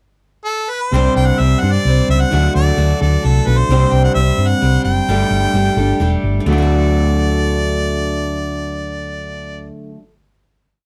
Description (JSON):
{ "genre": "rock", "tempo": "130 BPM", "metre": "3/4", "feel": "straight", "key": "D mixolydian", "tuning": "A4 = 438 Hz", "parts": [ { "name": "clear harmonica", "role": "melody", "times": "0.5-9.7 s", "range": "A4 to G5", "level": "-23 LUFS", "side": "equal", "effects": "none" }, { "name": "picked steel-string acoustic guitar", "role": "accompaniment", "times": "0.9-10.1 s", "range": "G2 to C5", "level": "-24 LUFS", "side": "equal", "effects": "none" }, { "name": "electric guitar through a small old amp", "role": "riff", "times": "0.9-10.0 s", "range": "C3 to G4", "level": "-23 LUFS", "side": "equal", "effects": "none" }, { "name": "hollow-body short-scale fingered electric bass", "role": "bass", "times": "0.9-9.7 s", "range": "E1 to G2", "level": "-18 LUFS", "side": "equal", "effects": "none" } ], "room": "light reverb", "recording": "dark, warm production", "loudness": "-15 LUFS", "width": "mono", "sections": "0.0-0.9 pickup bar; 0.9-6.5 pre-chorus; 6.5-9.2 final chord", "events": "none", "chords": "0.0 N.C.; 0.9 Csus2; 2.3 D; 3.7 Csus2; 5.1 Gsus2; 6.5 D" }